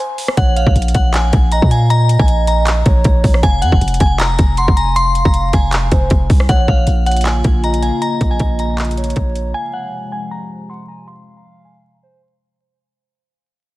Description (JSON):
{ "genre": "hip hop, trap", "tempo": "157 BPM", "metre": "4/4", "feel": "half-time", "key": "Bb minor", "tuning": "A4 = 440 Hz", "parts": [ { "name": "glassy synth bell", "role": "melody", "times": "0.0-12.6 s", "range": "F5 to C6", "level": "-20 LUFS", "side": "left 2 dB", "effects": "chorus, low-pass filter, digital delay" }, { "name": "trap drum kit", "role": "drums", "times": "0.2-9.4 s", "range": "handclaps, hi-hat, kick drum, rim click", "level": "-15 LUFS", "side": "equal", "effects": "none" }, { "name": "hollow clarinet-like synth lead", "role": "second line", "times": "0.4-12.2 s", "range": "C5 to Ab5", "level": "-25 LUFS", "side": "right 5 dB", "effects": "chorus, digital delay" }, { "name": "warm 808-style bass", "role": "bass", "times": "0.4-9.5 s", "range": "F1 to Bb2", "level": "-15 LUFS", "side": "equal", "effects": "none" }, { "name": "dark analog pad", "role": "sustained chords", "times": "7.0-12.6 s", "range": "C3 to F4", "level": "-24 LUFS", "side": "left 1 dB", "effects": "chorus, low-pass filter" } ], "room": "digital ambience", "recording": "dense, heavily limited modern master, vinyl crackle", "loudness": "-12 LUFS", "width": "side -18 dB against mid", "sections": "0.0-6.5 A section; 6.5-12.6 B section", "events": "break 0.0-0.4; fade-out 6.5-12.6; filter sweep 6.5-12.6", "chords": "0.4 Bbm; 3.4 Fm; 6.5 Bbm; 9.5 Fm" }